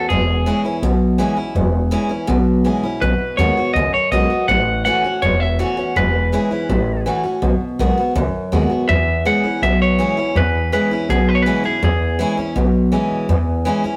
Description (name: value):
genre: rockabilly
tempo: 164 BPM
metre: 4/4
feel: straight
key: E major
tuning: A4 = 440 Hz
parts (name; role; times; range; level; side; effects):
- clean electric guitar; melody; 0.0-0.6, 3.0-12.3 s; G#4 to F#5; -22 LUFS; equal; none
- picked steel-string acoustic guitar; accompaniment; 0.0-14.0 s; E2 to F#4; -23 LUFS; equal; none
- upright bass; bass; 0.1-13.9 s; E1 to E2; -20 LUFS; equal; none
room: moderate stone room reverb, RT60 1.3 s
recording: rough rehearsal-room recording, warm saturation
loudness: -18 LUFS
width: mono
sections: 0.0-8.9 A section; 8.9-14.0 A section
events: none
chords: 0.1 E6; 3.0 B6; 4.5 A6; 6.0 E6; 6.7 A6; 7.4 B6; 8.9 E6